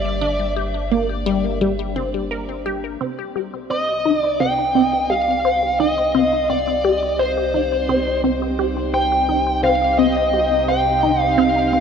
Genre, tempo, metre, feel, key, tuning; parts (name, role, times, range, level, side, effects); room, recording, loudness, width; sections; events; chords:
ambient; 86 BPM; 4/4; straight; G minor, C minor from 3.0 s; A4 = 440 Hz
smooth overdriven lead guitar; melody; 0.0-11.8 s; C5 to G5; -19 LUFS; equal; ping-pong delay
phased analog pad; sustained chords; 0.0-11.8 s; C3 to G5; -28 LUFS; right 2 dB; phaser, chorus
warm sub bass; bass; 0.0-11.8 s; G1 to C2; -29 LUFS; equal
resonant blip pluck; riff; 0.2-11.8 s; G3 to C5; -21 LUFS; left 1 dB; phaser, ping-pong delay
bubbling stepped-filter texture; texture; 3.0-11.8 s; C4 to C5; -35 LUFS; right 2 dB
wet plate reverb, RT60 3.6 s; dreamy mix soaked in reverb; -17 LUFS; side -6 dB against mid
0.0-3.0 A section; 3.0-11.8 B section
fade-in on analog synth pad 3.0-11.8; fade-in on sub bass 3.0-11.8
0.0 Gm; 3.0 Cm